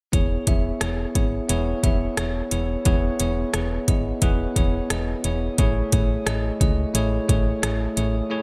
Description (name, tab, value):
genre	1980s-style pop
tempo	88 BPM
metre	4/4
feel	straight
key	E major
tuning	A4 = 440 Hz
part	bell-like tine electric piano	accompaniment	0.1-8.4 s	A3 to E5	-28 LUFS	equal	shimmer reverb
part	solid FM bass	bass	0.1-8.2 s	E1 to C#2	-28 LUFS	equal	none
part	80s electronic pad drums	drums	0.1-8.1 s	hi-hat, kick drum, rim click	-25 LUFS	equal	gated reverb
room	light reverb, digital ambience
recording	none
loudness	-23 LUFS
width	mono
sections	0.1-8.4 A section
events	none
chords	0.1 E6; 5.6 Amaj7